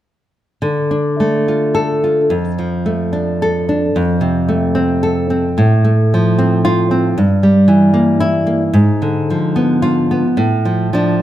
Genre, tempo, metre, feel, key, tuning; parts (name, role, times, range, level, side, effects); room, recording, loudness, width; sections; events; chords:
romantic piece for solo classical guitar; 69-78 BPM; 2/4; rubato; D minor; A4 = 440 Hz
nylon-string guitar; solo; 0.6-11.2 s; F2 to A4; -12 LUFS; equal
moderate recital hall reverb, RT60 1.4 s; -12 LUFS; side -12 dB against mid
0.6-11.2 A section
0.6 Dm; 2.3 Dm/F; 3.9 F; 5.6 F/A; 7.2 Edim/G; 8.7 G#dim7; 10.4 Dm/A